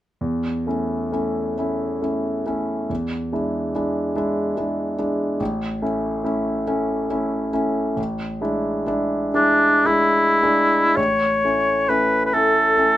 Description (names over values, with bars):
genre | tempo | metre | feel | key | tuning
classical, romantic duo for oboe and grand piano | 33-48 BPM (dotted quarters) | 6/8 | rubato | A major | A4 = 440 Hz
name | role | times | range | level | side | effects
clear concert grand piano | accompaniment | 0.2-13.0 s | A1 to E4 | -21 LUFS | equal | none
warm oboe | melody | 9.3-13.0 s | D4 to C#5 | -16 LUFS | equal | none
room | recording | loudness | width
moderate studio ambience, RT60 0.5 s | none | -18 LUFS | side -14 dB against mid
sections
0.2-11.0 A section; 11.0-13.0 B section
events
none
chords
0.2 A/E; 2.9 E7; 5.4 A; 8.0 E7/A; 11.0 A